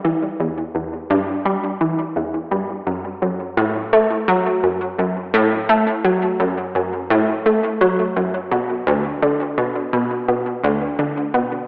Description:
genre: ambient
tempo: 85 BPM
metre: 4/4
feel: straight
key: unclear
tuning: A4 = 440 Hz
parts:
  - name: analog pluck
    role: solo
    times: 0.0-11.6 s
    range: D2 to A3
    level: -17 LUFS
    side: equal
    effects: chorus, cassette tape, analog delay
room: wet spring reverb, RT60 1.9 s, digital ambience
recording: home recording on cassette, AM radio sound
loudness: -17 LUFS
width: side -40 dB against mid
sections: 0.0-11.7 A section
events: none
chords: none

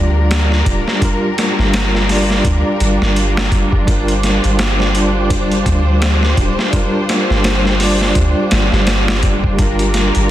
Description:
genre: trip hop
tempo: 84 BPM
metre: 4/4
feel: swing 58% on 16ths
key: G minor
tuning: A4 = 440 Hz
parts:
  - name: tine electric piano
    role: accompaniment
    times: 0.0-10.3 s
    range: G3 to D5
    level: -19 LUFS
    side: equal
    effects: tremolo, vintage 12-bit sampler grit, tape echo
  - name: warm studio string section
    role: sustained chords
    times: 0.0-10.3 s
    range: G3 to C5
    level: -21 LUFS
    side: equal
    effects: vintage 12-bit sampler grit
  - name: soft 808-style bass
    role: bass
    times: 0.0-10.3 s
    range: D1 to D2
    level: -16 LUFS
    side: equal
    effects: none
  - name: flickering grainy texture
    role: texture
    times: 0.0-10.3 s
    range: G4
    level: -28 LUFS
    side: right 3 dB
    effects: built-in reverb
  - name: boom bap sampler-style drum kit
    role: drums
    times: 0.3-10.3 s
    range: hi-hat, kick drum, snare drum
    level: -17 LUFS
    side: equal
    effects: none
room: little or no reverb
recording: dense, heavily limited modern master, vinyl crackle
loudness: -12 LUFS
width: side -13 dB against mid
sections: 0.0-10.3 A section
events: none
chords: 0.0 Gm7

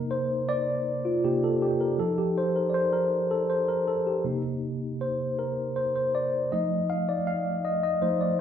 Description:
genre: R&B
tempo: 53 BPM (dotted quarters)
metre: 6/8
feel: straight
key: C dorian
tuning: A4 = 441 Hz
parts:
  - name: mellow tine electric piano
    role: solo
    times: 0.0-8.4 s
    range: C3 to F5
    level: -24 LUFS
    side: equal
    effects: medium stereo tremolo
room: wet large studio reverb, RT60 1.3 s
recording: band playing live in one room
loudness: -24 LUFS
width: side -9 dB against mid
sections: 0.0-8.4 A section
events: tine electric piano solo 0.0-8.4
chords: 0.0 Cm7; 2.0 F7; 4.2 Cm7; 6.5 F7

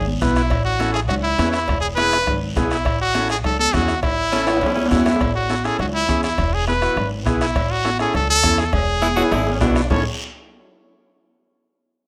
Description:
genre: latin, cumbia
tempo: 204 BPM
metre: 4/4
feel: straight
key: A major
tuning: A4 = 441 Hz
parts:
  - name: brilliant trumpet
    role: melody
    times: 0.0-10.0 s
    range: E4 to C#5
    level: -23 LUFS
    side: equal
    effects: slapback echo
  - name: upright bass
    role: bass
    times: 0.0-10.0 s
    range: E1 to E2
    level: -27 LUFS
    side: equal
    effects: none
  - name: congas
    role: percussion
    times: 0.1-10.0 s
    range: none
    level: -29 LUFS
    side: equal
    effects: none
  - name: overdriven combo organ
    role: accompaniment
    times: 0.2-10.0 s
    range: B3 to B4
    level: -28 LUFS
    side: equal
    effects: none
  - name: bombo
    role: percussion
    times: 0.2-10.0 s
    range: none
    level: -28 LUFS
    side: equal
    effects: none
  - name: cowbell and timbales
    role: percussion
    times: 0.2-10.0 s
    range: none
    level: -29 LUFS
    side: equal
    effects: none
  - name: guiro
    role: percussion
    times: 0.2-10.0 s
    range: none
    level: -38 LUFS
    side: equal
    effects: none
  - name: bright tenor saxophone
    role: second line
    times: 4.3-5.2, 9.0-10.0 s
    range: B3 to F#4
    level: -27 LUFS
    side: equal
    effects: none
room: light reverb, studio ambience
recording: rough home demo mix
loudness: -19 LUFS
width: mono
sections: 0.0-5.2 A section; 5.2-9.9 B section; 9.9-11.1 C section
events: drum fill 4.5-5.2, 9.2-9.9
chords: 0.0 E; 0.5 A; 1.7 E; 2.9 A; 6.4 E; 7.6 A; 8.7 E7; 9.9 A

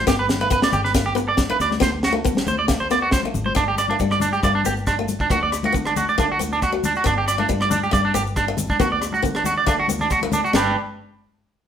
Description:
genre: highlife guitar band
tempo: 138 BPM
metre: 4/4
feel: straight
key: G major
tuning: A4 = 444 Hz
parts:
  - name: electric guitar at the edge of break-up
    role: arpeggios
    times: 0.0-10.8 s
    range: D4 to D5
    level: -21 LUFS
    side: right 3 dB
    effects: none
  - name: fingered electric bass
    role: bass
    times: 0.0-10.7 s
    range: G1 to D3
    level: -28 LUFS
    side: left 1 dB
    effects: none
  - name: picked old ladder-braced acoustic guitar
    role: accompaniment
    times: 0.1-10.7 s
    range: F#3 to B3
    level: -26 LUFS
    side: left 5 dB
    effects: none
  - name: tight funk drum kit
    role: drums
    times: 0.1-10.6 s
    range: hi-hat, kick drum, rim click, snare drum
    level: -23 LUFS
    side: equal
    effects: none
  - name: maracas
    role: percussion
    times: 0.1-10.8 s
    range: none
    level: -35 LUFS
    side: left 7 dB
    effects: none
  - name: congas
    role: percussion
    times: 0.3-10.7 s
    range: none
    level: -29 LUFS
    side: left 4 dB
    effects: none
room: wet studio reverb, RT60 0.7 s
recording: band playing live in one room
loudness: -18 LUFS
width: side -9 dB against mid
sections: 0.0-3.6 A section; 3.6-10.5 B section; 10.5-11.7 C section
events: none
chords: 0.1 G; 1.8 D7(no3); 3.6 G5; 5.3 D; 7.1 G; 8.8 D; 10.5 G

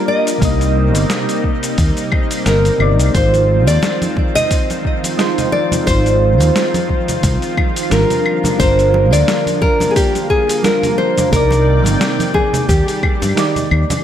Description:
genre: sunset chillout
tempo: 88 BPM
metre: 4/4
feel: swing 56% on 16ths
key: Ab lydian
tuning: A4 = 439 Hz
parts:
  - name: nylon-string guitar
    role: melody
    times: 0.0-13.7 s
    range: G4 to Eb5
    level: -17 LUFS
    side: equal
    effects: tape echo
  - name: soft electric-piano-like synth keys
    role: accompaniment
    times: 0.0-14.0 s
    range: C3 to Eb5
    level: -20 LUFS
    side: moving between left 3 dB and right 5 dB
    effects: chorus, phaser, auto-pan, tape echo
  - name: lush unison pad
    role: sustained chords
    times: 0.0-14.0 s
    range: C3 to G5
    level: -22 LUFS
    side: equal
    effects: chorus
  - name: dusty soul sampler-style drum kit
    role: drums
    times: 0.3-14.0 s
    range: cabasa, claves, hi-hat, snare drum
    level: -22 LUFS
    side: left 1 dB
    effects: studio reverb, tape echo
  - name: overdriven fingered electric bass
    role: bass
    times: 0.4-13.8 s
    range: G1 to G2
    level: -14 LUFS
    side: equal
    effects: tube saturation
  - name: electronic kick drum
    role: drums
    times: 0.4-13.2 s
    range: none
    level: -18 LUFS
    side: equal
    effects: studio reverb
  - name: congas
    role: percussion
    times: 3.3-14.0 s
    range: none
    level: -23 LUFS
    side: right 2 dB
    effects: none
room: moderate plate reverb, RT60 1.9 s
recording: echo-heavy mix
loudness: -12 LUFS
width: side -10 dB against mid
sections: 0.0-14.0 A section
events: none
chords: 0.4 Cm9; 3.1 Ab6; 8.3 Gm7; 11.3 Cm9; 12.7 Ebmaj7

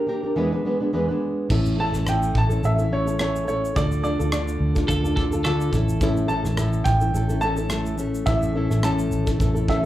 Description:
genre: acoustic pop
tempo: 106 BPM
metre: 4/4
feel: swing 55% on 16ths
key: unclear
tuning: A4 = 440 Hz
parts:
  - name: nylon-string guitar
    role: accompaniment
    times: 0.0-9.9 s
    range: E2 to B4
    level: -24 LUFS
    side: left 1 dB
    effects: slapback echo
  - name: vintage muted fingered electric bass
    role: bass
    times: 1.5-9.9 s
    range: A1 to D2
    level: -24 LUFS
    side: equal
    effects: none
  - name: modern studio drum kit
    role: drums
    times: 1.5-9.8 s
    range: crash cymbal, kick drum, rim click, shaker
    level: -27 LUFS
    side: equal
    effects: none
  - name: clear upright piano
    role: melody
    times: 1.8-9.9 s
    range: C#5 to A5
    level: -27 LUFS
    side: right 1 dB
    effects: none
  - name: twelve-string electric guitar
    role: second line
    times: 4.9-6.1 s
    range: A4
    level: -29 LUFS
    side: right 2 dB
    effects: none
room: light reverb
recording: live gig heard through the venue's PA, club reverb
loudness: -20 LUFS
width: side -14 dB against mid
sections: 0.0-1.5 A section; 1.5-9.9 B section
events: none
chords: 0.4 E7; 1.5 A; 3.8 Dm; 5.7 A

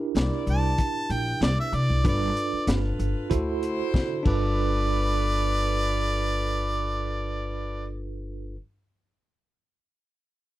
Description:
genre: straight-eighth soul blues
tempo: 95 BPM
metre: 4/4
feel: swing 55% on 16ths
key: G mixolydian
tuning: A4 = 442 Hz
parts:
  - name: bell-like tine electric piano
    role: accompaniment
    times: 0.0-8.6 s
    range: D4 to C5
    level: -30 LUFS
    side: right 4 dB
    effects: medium stereo tremolo
  - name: upright bass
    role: bass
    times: 0.1-8.6 s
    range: G1 to D3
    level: -27 LUFS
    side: left 1 dB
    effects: none
  - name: clear horn section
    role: sustained chords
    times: 0.2-7.9 s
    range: E4 to D5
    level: -37 LUFS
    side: left 5 dB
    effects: none
  - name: crunchy breakbeat drum kit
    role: drums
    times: 0.2-4.4 s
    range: crash cymbal, hi-hat, kick drum, snare drum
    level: -26 LUFS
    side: left 1 dB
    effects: none
  - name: clear harmonica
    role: melody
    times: 0.5-7.9 s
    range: D5 to A5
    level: -28 LUFS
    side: right 1 dB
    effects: overdrive, slapback echo
room: little or no reverb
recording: dry, close 1970s-style studio recording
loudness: -23 LUFS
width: side -15 dB against mid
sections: 0.0-4.6 A section; 4.6-7.1 B section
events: drum fill 3.9-4.6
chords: 0.0 C9; 2.0 G9; 3.3 D9; 4.3 G9

